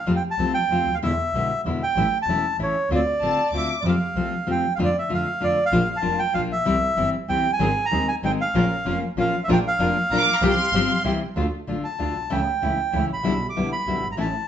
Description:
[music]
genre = tango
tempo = 192 BPM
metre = 3/4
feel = rubato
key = D minor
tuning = A4 = 440 Hz
[part]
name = bandoneon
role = melody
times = 0.0-14.5 s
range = C#5 to D6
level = -23 LUFS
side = right 2 dB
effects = none
[part]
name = nylon-string guitar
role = accompaniment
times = 0.1-14.3 s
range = B2 to Ab4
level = -25 LUFS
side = left 3 dB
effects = none
[part]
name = clear double bass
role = bass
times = 0.1-14.3 s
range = E1 to F2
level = -28 LUFS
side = right 1 dB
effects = none
[part]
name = rich symphonic violin section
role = second line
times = 3.2-3.8, 10.1-11.1 s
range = A5 to D6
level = -24 LUFS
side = left 1 dB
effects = none
[part]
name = warm studio string section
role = stabs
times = 7.6-14.3 s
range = G3 to Bb4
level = -32 LUFS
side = right 2 dB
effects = none
[sound]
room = wet large studio reverb, RT60 0.8 s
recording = band playing live in one room, nothing above 7.9 kHz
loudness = -20 LUFS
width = side -9 dB against mid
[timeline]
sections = 0.0-3.8 A section; 3.8-11.4 B section; 11.4-14.5 A section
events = none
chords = 0.1 F; 1.0 E7; 2.0 A; 2.9 Dm7; 3.8 F; 4.8 Dm/F; 5.7 Bb; 6.7 C; 7.6 Ab; 8.5 Bbm; 9.5 Bb; 10.4 Csus4; 11.0 C; 11.4 Dm; 12.3 A/C#; 13.2 Em7/B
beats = | 0.06 0.38 0.70 | 1.01 1.33 1.64 | 1.95 2.27 2.58 | 2.89 3.21 3.52 | 3.84 4.16 4.47 | 4.79 5.10 5.41 | 5.72 6.04 6.34 | 6.66 6.97 7.29 | 7.60 7.92 8.23 | 8.55 8.86 9.17 | 9.48 9.79 10.10 | 10.41 10.72 11.04 | 11.36 11.67 11.99 | 12.30 12.61 12.93 | 13.24 13.55 13.86 | 14.18

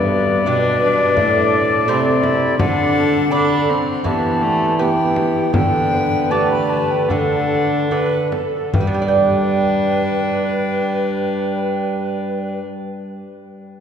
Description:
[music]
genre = classical, renaissance-style consort dance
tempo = 72-85 BPM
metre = 4/4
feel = straight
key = G major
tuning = A4 = 437 Hz
[part]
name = bright baroque flute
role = melody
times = 0.0-12.6 s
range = D5 to B5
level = -21 LUFS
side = left 3 dB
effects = none
[part]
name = alto recorder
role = second line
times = 0.0-12.6 s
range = G4 to C5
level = -23 LUFS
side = right 1 dB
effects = none
[part]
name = lute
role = accompaniment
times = 0.0-13.0 s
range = G2 to G5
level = -23 LUFS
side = right 3 dB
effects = none
[part]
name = rich viola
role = accompaniment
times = 0.0-12.6 s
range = A3 to E4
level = -25 LUFS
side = left 2 dB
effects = none
[part]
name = warm trombone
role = bass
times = 0.0-12.6 s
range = G2 to G3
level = -21 LUFS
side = right 1 dB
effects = none
[part]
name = frame drum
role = percussion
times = 1.2-9.1 s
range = none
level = -26 LUFS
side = left 1 dB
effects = none
[sound]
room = wet cathedral reverb, RT60 4.8 s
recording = heard from further back in the room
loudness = -15 LUFS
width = side -8 dB against mid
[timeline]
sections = 0.0-8.7 A section; 8.7-12.0 B section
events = slowing down 1.2-8.7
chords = 0.0 G; 1.2 Am; 2.6 D; 4.0 Em; 5.5 Dsus4; 7.1 D; 8.7 G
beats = 0.46 1.17 1.88 | 2.59 3.32 4.05 4.79 | 5.54 6.31 7.10 7.91 | 8.73 9.56 10.38 11.21

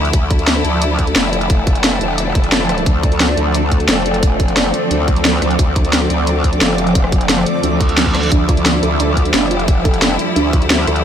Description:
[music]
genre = dark technical drum and bass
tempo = 176 BPM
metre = 4/4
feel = straight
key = D minor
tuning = A4 = 440 Hz
[part]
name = bright studio string section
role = sustained chords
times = 0.0-11.0 s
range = D3 to E4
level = -22 LUFS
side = left 3 dB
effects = sidechain pumping
[part]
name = growl bass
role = bass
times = 0.0-11.0 s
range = E1 to D2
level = -18 LUFS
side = equal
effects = chorus, tube saturation, sidechain pumping
[part]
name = drum and bass drum kit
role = drums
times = 0.0-11.0 s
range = hi-hat, rim click, snare drum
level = -17 LUFS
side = equal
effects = small room ambience
[part]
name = granular cloud pad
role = texture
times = 0.0-11.0 s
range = F3 to D6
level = -19 LUFS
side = right 1 dB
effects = built-in reverb, sidechain pumping
[part]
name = electronic kick drum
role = drums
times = 0.1-10.6 s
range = none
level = -15 LUFS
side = equal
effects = small room ambience
[part]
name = reverse cymbal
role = sound effects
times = 7.8-8.3 s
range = none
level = -25 LUFS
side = right 3 dB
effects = none
[part]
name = soft round pluck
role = arpeggios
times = 8.3-10.9 s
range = D4 to A4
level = -22 LUFS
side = right 6 dB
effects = chorus, sidechain pumping, tape echo
[sound]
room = light reverb, digital ambience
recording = none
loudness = -12 LUFS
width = side -9 dB against mid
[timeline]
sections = 0.0-11.0 A section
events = reverse cymbal 7.8-8.3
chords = 0.0 Dm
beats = | 0.14 0.48 0.82 1.16 | 1.50 1.84 2.18 2.52 | 2.86 3.20 3.54 3.88 | 4.23 4.57 4.91 5.25 | 5.59 5.93 6.27 6.61 | 6.95 7.29 7.63 7.98 | 8.32 8.66 9.00 9.34 | 9.68 10.02 10.36 10.70

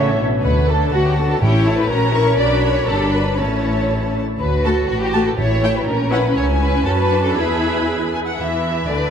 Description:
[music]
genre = quick classical-period movement for symphony orchestra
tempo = 121 BPM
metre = 2/4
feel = rubato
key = D major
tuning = A4 = 442 Hz
[part]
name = warm studio violin section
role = melody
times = 0.0-9.1 s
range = D5 to C#6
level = -26 LUFS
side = right 1 dB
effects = none
[part]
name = warm studio violin section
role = second line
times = 0.0-9.1 s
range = C#4 to D5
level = -21 LUFS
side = left 1 dB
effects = none
[part]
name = dark studio viola section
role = accompaniment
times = 0.0-9.1 s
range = D3 to C#5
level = -23 LUFS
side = left 2 dB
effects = none
[part]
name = rich chamber cello section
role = bass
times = 0.0-9.1 s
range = B2 to B4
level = -23 LUFS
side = equal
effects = none
[part]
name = warm chamber double bass section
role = bass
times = 0.0-9.1 s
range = G1 to F#2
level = -21 LUFS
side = equal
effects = none
[part]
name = timpani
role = percussion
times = 1.4-1.9, 5.4-5.8 s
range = A2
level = -23 LUFS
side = right 2 dB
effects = none
[sound]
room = wet cathedral reverb, RT60 5.4 s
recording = in a vast, echoing space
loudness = -15 LUFS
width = side -8 dB against mid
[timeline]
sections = 0.4-8.4 A section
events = none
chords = 0.4 D; 1.4 A7; 1.9 F#7/A#; 2.4 Bm; 2.9 G; 3.4 A; 4.4 D; 5.4 A7; 5.9 F#7/A#; 6.4 C#m; 6.9 F#m; 7.4 E; 8.4 C#m7 (rootless)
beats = | 0.44 0.93 | 1.42 1.91 | 2.39 2.89 | 3.38 3.89 | 4.40 4.89 | 5.38 5.87 | 6.36 6.85 | 7.36 7.87 | 8.39 8.89

